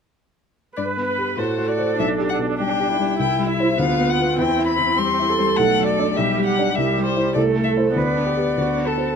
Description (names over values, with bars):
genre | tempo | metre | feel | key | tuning
quick classical-period movement for piano quartet | 100 BPM | 2/4 | straight | G major | A4 = 442 Hz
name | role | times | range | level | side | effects
muted violin | melody | 0.8-9.2 s | A4 to C6 | -22 LUFS | left 6 dB | none
muted cello | second line | 0.8-9.2 s | E4 to B4 | -25 LUFS | right 9 dB | none
muted viola | accompaniment | 0.8-9.2 s | G3 to B4 | -25 LUFS | right 5 dB | none
warm baby grand piano | accompaniment | 0.8-9.2 s | B1 to D5 | -22 LUFS | left 2 dB | none
room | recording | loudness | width
light reverb | none | -17 LUFS | side -6 dB against mid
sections
0.8-9.2 A section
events
none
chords
0.8 G; 1.4 F#dim/A; 2.0 G/B; 3.2 C; 3.8 Bdim/D; 4.4 C/E; 5.6 Bm; 6.2 G/B; 6.8 C; 7.4 Am/C; 8.0 G/D; 8.6 D7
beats
| 0.77 1.38 | 1.99 2.59 | 3.19 3.79 | 4.38 4.98 | 5.58 6.17 | 6.76 7.36 | 7.96 8.57